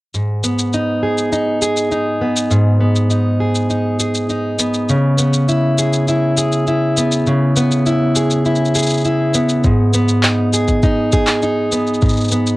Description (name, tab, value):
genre	folktronica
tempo	101 BPM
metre	4/4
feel	straight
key	G# minor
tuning	A4 = 440 Hz
part	fingerpicked plugged-in steel-string acoustic guitar	arpeggios	0.1-12.6 s	G#2 to G#4	-14 LUFS	equal	low-pass filter, cassette tape, analog delay
part	electronic shaker and handclaps	drums	0.1-12.6 s	none	-20 LUFS	left 1 dB	none
part	electronic kick drum	drums	9.6-12.1 s	none	-15 LUFS	equal	overdrive
room	moderate booth ambience, RT60 0.2 s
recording	home recording on cassette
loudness	-13 LUFS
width	side -19 dB against mid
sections	0.1-12.6 A section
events	none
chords	0.1 G#m; 4.9 C#m7; 9.6 G#m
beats	| 0.14 0.74 1.33 1.92 | 2.52 3.11 3.71 4.30 | 4.89 5.49 6.08 6.68 | 7.27 7.87 8.46 9.05 | 9.65 10.24 10.84 11.43 | 12.02